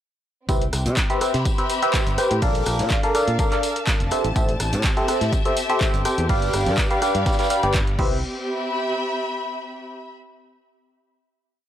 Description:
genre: piano house.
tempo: 124 BPM.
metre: 4/4.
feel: straight.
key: C major.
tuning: A4 = 436 Hz.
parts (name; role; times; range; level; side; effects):
barking FM electric piano; riff; 0.5-8.2 s; G4 to G5; -23 LUFS; equal; phaser, sidechain pumping, tape echo.
fingered electric bass; bass; 0.5-8.2 s; F1 to C3; -24 LUFS; equal; sidechain pumping.
electronic kick drum; drums; 0.5-8.1 s; none; -23 LUFS; equal; none.
modern studio drum kit; drums; 0.5-7.9 s; hi-hat, snare drum, tambourine; -35 LUFS; equal; sidechain pumping on hats, high-pass filter on hats, high-pass filter on snare, sidechain pumping on perc, high-pass filter on perc, high-pass filter on room.
punchy analog drum machine; drums; 0.5-8.1 s; crash cymbal, handclaps, hi-hat, rim click; -28 LUFS; equal; none.
warm studio string section; texture; 0.5-10.1 s; C4 to B5; -27 LUFS; left 1 dB; sidechain pumping.
room: small room reverb.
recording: dry, gritty hardware recording.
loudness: -19 LUFS.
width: side -11 dB against mid.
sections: 0.5-8.2 drop; 8.2-10.2 final chord.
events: drop 0.5-8.2.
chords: 0.5 Cmaj7; 2.4 Bbmaj7; 4.1 Am7; 6.3 G7; 8.0 Cmaj7.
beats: | 0.49 0.97 1.46 1.94 | 2.42 2.91 3.39 3.87 | 4.36 4.84 5.33 5.81 | 6.29 6.78 7.26 7.75 | 8.23 8.71 9.20 9.68.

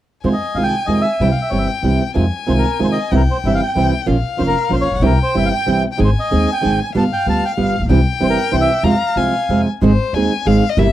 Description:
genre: tango.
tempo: 188 BPM.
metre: 3/4.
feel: rubato.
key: F minor.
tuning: A4 = 440 Hz.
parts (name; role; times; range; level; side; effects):
warm violin; second line; 0.2-10.9 s; C5 to Bb5; -23 LUFS; left 7 dB; none.
nylon-string guitar; accompaniment; 0.2-10.9 s; C3 to Ab4; -17 LUFS; right 3 dB; none.
upright bass; bass; 0.2-10.9 s; F1 to F2; -19 LUFS; equal; none.
bandoneon; melody; 0.3-9.6 s; Bb4 to A5; -20 LUFS; equal; none.
room: small room reverb.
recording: dry, close 1970s-style studio recording.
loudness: -14 LUFS.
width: side -13 dB against mid.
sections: 0.2-2.2 A section; 2.2-9.8 B section; 9.8-10.9 C section.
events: violin solo 9.8-10.9.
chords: 0.2 Fm7; 1.2 C; 2.2 Fm7; 3.1 C; 4.1 Bbm; 5.0 C; 6.0 Ab; 6.9 G7; 7.9 C; 8.8 Fm; 9.8 Ab.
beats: | 0.24 0.56 0.88 | 1.20 1.52 1.84 | 2.16 2.48 2.80 | 3.12 3.44 3.75 | 4.07 4.39 4.70 | 5.02 5.34 5.67 | 5.99 6.31 6.63 | 6.95 7.26 7.58 | 7.89 8.21 8.53 | 8.85 9.17 9.49 | 9.81 10.13 10.45 | 10.77.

